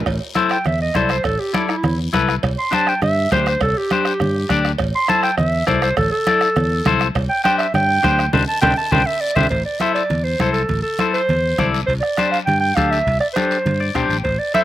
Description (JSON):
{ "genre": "latin, cumbia", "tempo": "203 BPM", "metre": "4/4", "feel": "straight", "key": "A minor", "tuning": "A4 = 440 Hz", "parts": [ { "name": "fingered electric bass", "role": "bass", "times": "0.0-14.4 s", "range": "A1 to G2", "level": "-21 LUFS", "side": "equal", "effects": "none" }, { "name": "bombo", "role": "percussion", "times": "0.1-14.6 s", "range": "none", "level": "-26 LUFS", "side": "right 2 dB", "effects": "none" }, { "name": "congas", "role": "percussion", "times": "0.1-14.6 s", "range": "none", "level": "-25 LUFS", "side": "equal", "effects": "none" }, { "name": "cowbell and timbales", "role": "percussion", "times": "0.1-14.6 s", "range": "none", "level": "-30 LUFS", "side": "right 6 dB", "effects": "slapback echo" }, { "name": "guiro", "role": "percussion", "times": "0.1-14.6 s", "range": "none", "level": "-33 LUFS", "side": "left 7 dB", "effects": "none" }, { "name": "clean electric guitar", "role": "accompaniment", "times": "0.4-14.6 s", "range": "D4 to G5", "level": "-20 LUFS", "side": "left 5 dB", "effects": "slapback echo" }, { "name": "warm clarinet", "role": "melody", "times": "0.5-14.6 s", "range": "E4 to C6", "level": "-19 LUFS", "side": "right 2 dB", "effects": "slapback echo" } ], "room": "little or no reverb", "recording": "recorded outdoors, with no room sound", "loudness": "-15 LUFS", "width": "side -13 dB against mid", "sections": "0.1-9.5 A section; 9.5-14.6 B section", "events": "clarinet solo 0.1-9.5; band accent 8.3-9.5; drum fill 8.8-9.5; clean electric guitar fill 13.7-14.2", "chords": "0.1 Am; 2.4 Csus2; 4.8 Am; 7.2 Csus2; 9.5 Am; 11.9 Csus2" }